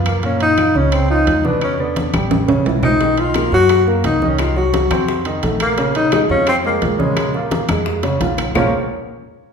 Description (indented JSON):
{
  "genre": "Afro-Cuban jazz",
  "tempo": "173 BPM",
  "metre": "4/4",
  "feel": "straight",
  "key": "Bb minor",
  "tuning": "A4 = 441 Hz",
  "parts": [
    { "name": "warm baby grand piano", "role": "accompaniment", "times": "0.0-8.7 s", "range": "Bb2 to Db5", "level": "-20 LUFS", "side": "right 2 dB", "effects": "none" },
    { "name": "upright bass", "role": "bass", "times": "0.0-8.7 s", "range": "A1 to Gb2", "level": "-21 LUFS", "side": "equal", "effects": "none" },
    { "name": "breathy tenor saxophone", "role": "melody", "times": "0.1-8.7 s", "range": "Ab3 to F#4", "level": "-17 LUFS", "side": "left 2 dB", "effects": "none" },
    { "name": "claves", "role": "percussion", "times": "0.1-8.6 s", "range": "none", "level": "-30 LUFS", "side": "left 6 dB", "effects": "none" },
    { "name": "timbales", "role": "percussion", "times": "0.1-8.6 s", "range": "none", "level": "-25 LUFS", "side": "right 5 dB", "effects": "none" },
    { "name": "congas", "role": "percussion", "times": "0.2-8.6 s", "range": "none", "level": "-24 LUFS", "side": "left 2 dB", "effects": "none" },
    { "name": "bongos", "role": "percussion", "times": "3.0-8.6 s", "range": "none", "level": "-26 LUFS", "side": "left 4 dB", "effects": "none" }
  ],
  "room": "wet recital hall reverb, RT60 1.3 s",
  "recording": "recorded in a church or concert hall",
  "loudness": "-14 LUFS",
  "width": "side -6 dB against mid",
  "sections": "0.0-8.6 A section",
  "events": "drum fill 2.1-3.0, 8.0-8.6",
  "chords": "0.2 Gbmaj7; 1.6 Em7; 2.3 A9; 3.0 Bmaj7; 4.4 Cdim; 5.1 F7; 5.8 Bbm7; 8.6 Bbm9"
}